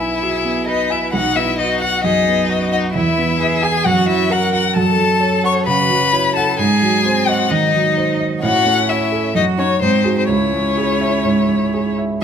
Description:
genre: quick classical-period movement for piano quartet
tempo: 131 BPM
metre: 4/4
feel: straight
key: B major, C# minor from 4.8 s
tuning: A4 = 440 Hz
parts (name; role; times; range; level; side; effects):
- rich violin; melody; 0.0-11.9 s; B#4 to C#6; -18 LUFS; left 6 dB; none
- rich cello; second line; 0.0-12.2 s; B#3 to B4; -24 LUFS; right 8 dB; none
- rich violin; second line; 0.0-12.2 s; B#3 to C#5; -23 LUFS; left 3 dB; none
- warm baby grand piano; accompaniment; 0.0-12.2 s; B1 to G#5; -18 LUFS; right 2 dB; none
room: moderate recital hall reverb, RT60 1.4 s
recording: close, detailed microphones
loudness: -14 LUFS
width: side -8 dB against mid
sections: 0.0-12.2 A section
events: none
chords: 0.0 E/B; 1.1 B; 3.0 E; 3.9 F#; 4.8 F#m; 6.6 G#7; 8.4 A; 9.4 D#m7/F#; 9.8 G#7; 10.3 C#m

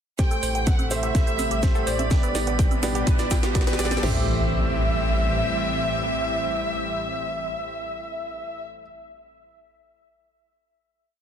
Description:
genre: progressive house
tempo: 125 BPM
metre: 4/4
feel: straight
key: A minor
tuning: A4 = 442 Hz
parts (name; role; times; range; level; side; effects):
- wide unison lead; melody; 0.2-8.6 s; D5 to G5; -29 LUFS; equal; ping-pong delay
- warm chamber violin section; second line; 0.2-8.6 s; D5 to G5; -33 LUFS; left 3 dB; sidechain pumping, dub echo
- supersaw pad; sustained chords; 0.2-8.6 s; A2 to G4; -31 LUFS; equal; sidechain pumping, low-pass filter
- analog pluck; arpeggios; 0.2-4.3 s; G4 to G5; -33 LUFS; equal; chorus, sidechain pumping, dub echo
- warm grand piano; stabs; 0.2-8.8 s; A3 to D5; -32 LUFS; right 2 dB; sidechain pumping, low-pass filter, dub echo
- house drum kit; drums; 0.2-4.1 s; crash cymbal, kick drum, snare drum; -22 LUFS; equal; none
- house drum kit; drums; 0.2-4.1 s; hi-hat, snare drum; -31 LUFS; right 1 dB; none
- tube shaker; percussion; 0.2-4.0 s; none; -39 LUFS; right 3 dB; none
- riser and impact; sound effects; 1.8-8.9 s; none; -32 LUFS; equal; none
- drifting glass-harmonics texture; texture; 0.8-4.0 s; B5; -38 LUFS; right 8 dB; chorus, built-in reverb, sidechain pumping
- woodblock, cowbell and congas; percussion; 0.3-4.0 s; none; -36 LUFS; right 3 dB; sidechain pumping on perc
- dark detuned saw bass; bass; 0.4-5.4 s; A1; -27 LUFS; equal; sidechain pumping
room: light reverb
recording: dense, heavily limited modern master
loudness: -21 LUFS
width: side -8 dB against mid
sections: 0.2-4.0 build; 4.0-7.9 final chord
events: build-up 0.2-4.0; drum fill 0.2-4.0; filter sweep on synth pluck 0.2-4.0; filter sweep on supersaw synth 0.2-4.0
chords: 0.2 Am7; 2.1 G/A; 4.0 Am7

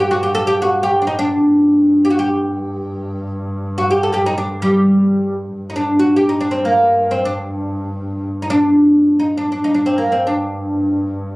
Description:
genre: Arabic maqam ensemble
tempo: free time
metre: none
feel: none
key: G maqam nahawand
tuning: A4 = 440 Hz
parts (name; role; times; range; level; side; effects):
- oud; melody; 0.0-11.1 s; G3 to A4; -14 LUFS; equal; none
- muted double bass; drone; 0.0-11.4 s; G2; -27 LUFS; equal; none
room: light reverb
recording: recorded on a phone in the room, club reverb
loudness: -14 LUFS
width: side -22 dB against mid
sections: 0.0-5.6 A section; 5.6-11.4 A section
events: none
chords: none

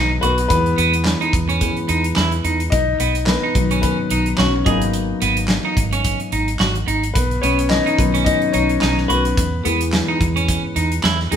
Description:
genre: piano-driven pop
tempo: 108 BPM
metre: 4/4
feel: swing 56% on 16ths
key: B major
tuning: A4 = 440 Hz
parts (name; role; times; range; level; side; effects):
- warm concert grand piano; accompaniment; 0.0-11.4 s; D#3 to D#5; -20 LUFS; left 3 dB; none
- electric guitar at the edge of break-up; riff; 0.0-11.4 s; B3 to G#4; -22 LUFS; right 4 dB; none
- vintage muted fingered electric bass; bass; 0.0-11.4 s; G#1 to E2; -22 LUFS; equal; none
- modern studio drum kit; drums; 0.2-11.4 s; handclaps, hi-hat, kick drum, snare drum; -22 LUFS; right 1 dB; none
room: moderate stone room reverb, RT60 1.0 s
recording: band playing live in one room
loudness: -15 LUFS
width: side -8 dB against mid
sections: 0.0-11.4 A section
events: grand piano solo 0.0-11.4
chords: 0.0 B; 0.5 E; 2.7 B; 4.7 G#m7; 7.2 B; 9.4 E

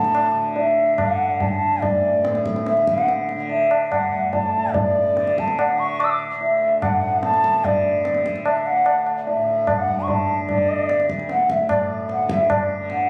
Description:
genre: indian classical, Hindustani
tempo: 146 BPM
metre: 7/4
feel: straight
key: D raga hamsadhwani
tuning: A4 = 441 Hz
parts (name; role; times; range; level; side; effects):
- bansuri; melody; 0.0-13.1 s; D5 to E6; -22 LUFS; equal; none
- tanpura; drone; 0.0-13.1 s; D2 to D3; -30 LUFS; equal; none
- tabla; percussion; 0.0-13.1 s; none; -27 LUFS; equal; none
room: wet recital hall reverb, RT60 1.3 s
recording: recorded on a phone in the room, club reverb, compression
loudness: -20 LUFS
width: mono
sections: 0.0-13.1 A section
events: speeding up 0.0-13.1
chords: none

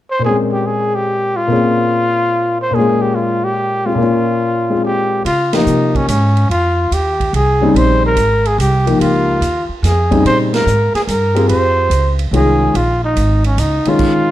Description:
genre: modal jazz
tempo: 144 BPM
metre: 3/4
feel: swing 67% on 8ths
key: Bb dorian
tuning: A4 = 440 Hz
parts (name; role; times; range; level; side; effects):
- breathy trumpet; melody; 0.1-14.3 s; Db4 to C5; -16 LUFS; equal; none
- warm grand piano; accompaniment; 0.2-14.3 s; Bb2 to Ab4; -16 LUFS; left 2 dB; none
- upright bass; bass; 5.2-13.9 s; Ab1 to Db3; -15 LUFS; right 1 dB; none
- swinging big-band drum kit; drums; 5.3-14.1 s; crash cymbal, hi-hat, kick drum, ride cymbal, snare drum; -25 LUFS; right 3 dB; none
room: moderate large studio reverb, RT60 1.1 s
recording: dark, warm production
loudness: -12 LUFS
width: side -13 dB against mid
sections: 0.2-5.2 A section; 5.2-14.3 B section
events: band accent 5.5, 10.5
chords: 0.2 Bbm9; 2.7 Db/Bb; 5.2 Bbm9; 7.7 Db; 10.2 Bbm9; 12.7 Db

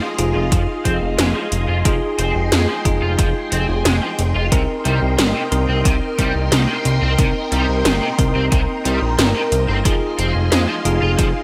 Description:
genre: synthwave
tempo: 90 BPM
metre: 4/4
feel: straight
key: F minor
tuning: A4 = 439 Hz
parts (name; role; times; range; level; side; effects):
- string machine, full ensemble; sustained chords; 0.0-11.4 s; Ab4 to C6; -27 LUFS; equal; phaser, ensemble chorus, sidechain pumping
- crunchy overdriven guitar; riff; 0.0-11.3 s; C3 to F4; -28 LUFS; equal; ensemble chorus, low-pass filter, delay
- bell-like tine electric piano; stabs; 0.0-11.4 s; C4 to Bb4; -26 LUFS; equal; delay
- fat analog bass; bass; 0.2-11.3 s; F1 to F2; -22 LUFS; equal; sidechain pumping
- 80s electronic pad drums; drums; 0.2-11.3 s; hi-hat, snare drum; -23 LUFS; equal; overdrive
- electronic kick drum; drums; 0.5-11.3 s; none; -21 LUFS; equal; overdrive
room: moderate lush hall reverb, RT60 2.2 s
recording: bright 1980s-style digital production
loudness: -18 LUFS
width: mono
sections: 0.0-11.4 A section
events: none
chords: 0.0 Fm7; 4.5 Cm7; 9.9 Fm7

